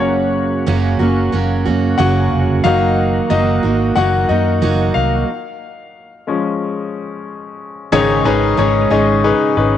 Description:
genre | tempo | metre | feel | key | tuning
pop | 91 BPM | 4/4 | straight | F# major | A4 = 440 Hz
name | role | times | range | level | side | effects
bright concert grand piano | accompaniment | 0.0-9.8 s | G#2 to F#5 | -17 LUFS | left 6 dB | cassette tape
overdriven tonewheel organ | sustained chords | 0.0-9.8 s | C#3 to F#4 | -23 LUFS | right 1 dB | chorus vibrato, slow rotary speaker, cassette tape
picked steel-string acoustic guitar | riff | 0.0-9.8 s | F#2 to G#4 | -18 LUFS | right 6 dB | cassette tape
vintage muted fingered electric bass | bass | 0.0-9.8 s | E#1 to F#2 | -18 LUFS | right 1 dB | none
room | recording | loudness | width
light reverb, small room ambience | home recording on cassette, nothing above 10.8 kHz | -13 LUFS | side -10 dB against mid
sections
0.0-7.9 A section; 7.9-9.8 B section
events
grand piano solo 0.0-7.9; stop 5.3-7.9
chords
0.0 F#; 2.7 D#m/F#; 5.3 C#; 7.9 G#sus4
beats
| 0.01 0.67 1.33 1.99 | 2.65 3.31 3.97 4.63 | 5.29 5.95 6.61 7.26 | 7.92 8.58 9.24

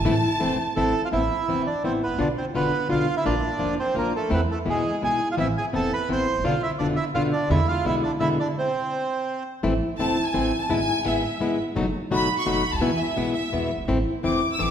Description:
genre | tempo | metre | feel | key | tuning
tango | 169 BPM | 3/4 | rubato | A harmonic minor | A4 = 440 Hz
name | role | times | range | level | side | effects
clear studio violin section | second line | 0.0-0.9, 10.0-14.7 s | E5 to E6 | -26 LUFS | equal | none
flamenco guitar | accompaniment | 0.0-14.7 s | B2 to F#4 | -24 LUFS | left 2 dB | none
upright bass | bass | 0.0-14.7 s | E1 to E2 | -30 LUFS | right 2 dB | none
bandoneon | melody | 0.8-9.4 s | G#3 to C6 | -25 LUFS | right 3 dB | none
room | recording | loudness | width
wet recital hall reverb, RT60 1.7 s | recorded in a church or concert hall | -21 LUFS | side -9 dB against mid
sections
0.0-1.1 A section; 1.1-9.6 B section; 9.6-14.7 A section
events
violin section solo 0.0-1.1, 9.6-14.7; stop 8.6-9.6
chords
0.0 Am; 1.1 Amadd9; 2.2 Bdim; 3.3 Bb; 4.3 Am/E; 4.7 E; 5.4 Amadd9; 6.4 Bdim; 7.5 E7; 8.6 N.C.; 9.6 Am; 10.7 E/G#; 11.8 B7/F#; 12.8 E; 13.9 Am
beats
| 0.04 0.40 0.76 | 1.12 1.48 1.84 | 2.19 2.54 2.90 | 3.25 3.60 3.96 | 4.31 4.67 5.02 | 5.38 5.74 6.09 | 6.45 6.80 7.15 | 7.50 7.85 8.21 | 8.56 8.92 9.28 | 9.64 10.00 10.35 | 10.71 11.06 11.41 | 11.76 12.11 12.46 | 12.81 13.16 13.52 | 13.88 14.24 14.59

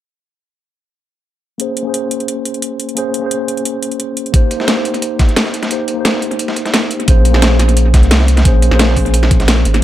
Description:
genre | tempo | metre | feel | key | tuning
liquid drum and bass | 175 BPM | 4/4 | straight | Bb dorian | A4 = 441 Hz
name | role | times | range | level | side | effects
mellow tine electric piano | accompaniment | 1.6-9.8 s | Bb3 to C5 | -18 LUFS | left 1 dB | medium stereo tremolo, low-pass filter, analog delay
drum and bass drum kit | drums | 1.6-9.8 s | hi-hat, snare drum | -18 LUFS | equal | analog delay
dusty soul sampler-style drum kit | drums | 4.3-9.7 s | hi-hat, snare drum | -20 LUFS | equal | overdrive, high-pass filter on hats, high-pass filter on snare
electronic kick drum | drums | 4.3-9.4 s | none | -10 LUFS | equal | none
warm sub bass | bass | 7.1-9.8 s | Ab1 to C2 | -11 LUFS | equal | none
room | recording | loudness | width
light reverb | echo-heavy mix | -11 LUFS | side -13 dB against mid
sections
1.6-7.1 A section; 7.1-9.8 B section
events
filter sweep on tine electric piano 1.6-7.1; break 5.7-7.1; drop 7.1-9.8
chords
1.6 Bbm9; 4.3 Cm7; 7.1 Bbm9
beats
| 1.60 1.94 2.28 2.62 | 2.97 3.31 3.65 4.00 | 4.34 4.68 5.02 5.37 | 5.71 6.05 6.40 6.74 | 7.08 7.42 7.77 8.11 | 8.45 8.80 9.14 9.48 | 9.82

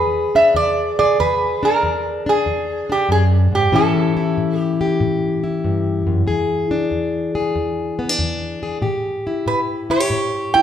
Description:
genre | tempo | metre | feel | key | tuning
acoustic country blues, solo or duo | 94 BPM | 4/4 | swing 68% on 8ths | E mixolydian | A4 = 442 Hz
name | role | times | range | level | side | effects
lap resonator guitar | melody | 0.0-5.0, 9.5-10.6 s | G4 to G5 | -17 LUFS | right 2 dB | none
fingerpicked plugged-in steel-string acoustic guitar | accompaniment | 0.0-10.6 s | E2 to G#4 | -18 LUFS | left 2 dB | none
room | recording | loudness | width
wet large studio reverb, RT60 1.3 s | band playing live in one room | -16 LUFS | side -9 dB against mid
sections
0.0-10.6 A section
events
none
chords
0.0 E7; 3.7 A7; 6.3 E7; 8.8 A7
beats
0.55 | 1.19 1.83 2.47 3.10 | 3.74 4.38 5.02 5.66 | 6.29 6.93 7.57 8.20 | 8.84 9.47 10.11

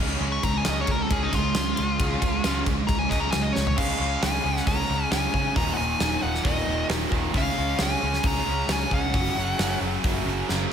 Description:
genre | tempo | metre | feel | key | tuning
hard rock | 134 BPM | 4/4 | straight | unclear | A4 = 440 Hz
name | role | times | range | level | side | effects
high-gain distorted guitar | riff | 0.0-10.7 s | Eb2 to Db4 | -31 LUFS | right 11 dB | distortion, slapback echo
overdriven electric guitar | riff | 0.0-10.7 s | Eb2 to Db4 | -33 LUFS | right 2 dB | none
sludgy distorted guitar | riff | 0.0-10.7 s | Eb2 to Db4 | -32 LUFS | left 8 dB | overdrive, slapback echo
picked electric bass | bass | 0.0-10.6 s | Eb1 to Db3 | -30 LUFS | equal | none
nasal lead guitar with a parked wah | melody | 0.3-9.8 s | Eb4 to Db6 | -28 LUFS | left 2 dB | overdrive
gated 80s drum kit | drums | 0.4-10.6 s | crash cymbal, hi-hat, kick drum, ride cymbal, snare drum, toms | -27 LUFS | equal | none
room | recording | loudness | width
moderate scoring stage reverb, RT60 1.9 s, studio reverb | big arena sound | -22 LUFS | side -8 dB against mid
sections
0.0-3.8 A section; 3.8-10.7 B section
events
lead electric guitar solo 0.0-3.8; drum fill 3.6, 10.5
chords
0.0 Db; 5.6 Eb5; 7.3 Db; 9.1 Gb5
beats
| 0.21 0.66 1.10 1.55 | 1.99 2.44 2.88 3.33 | 3.78 4.22 4.67 5.12 | 5.56 6.01 6.46 6.90 | 7.35 7.80 8.24 8.69 | 9.14 9.59 10.04 10.49

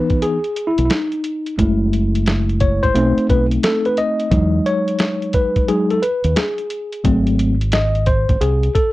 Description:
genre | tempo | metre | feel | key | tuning
hip hop, jazz-hop | 88 BPM | 4/4 | swing 65% on 16ths | unclear | A4 = 440 Hz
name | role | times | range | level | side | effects
tine electric piano | accompaniment | 0.0-8.9 s | E3 to D#5 | -17 LUFS | left 1 dB | medium stereo tremolo
lo-fi sampler-style drum kit | drums | 0.1-8.9 s | hi-hat, kick drum, snare drum | -20 LUFS | equal | none
deep dub fingered electric bass | bass | 0.8-8.7 s | F#1 to E2 | -18 LUFS | equal | none
room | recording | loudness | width
little or no reverb | dry, close 1970s-style studio recording | -15 LUFS | side -18 dB against mid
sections
0.0-8.9 A section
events
tine electric piano solo 0.0-8.9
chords
0.0 C#m9 (rootless); 1.6 F#m9; 3.0 B7b9; 4.3 Emaj9 (rootless); 7.0 G#7b9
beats
0.23 0.91 | 1.59 2.27 2.95 3.63 | 4.32 5.00 5.68 6.36 | 7.04 7.73 8.41

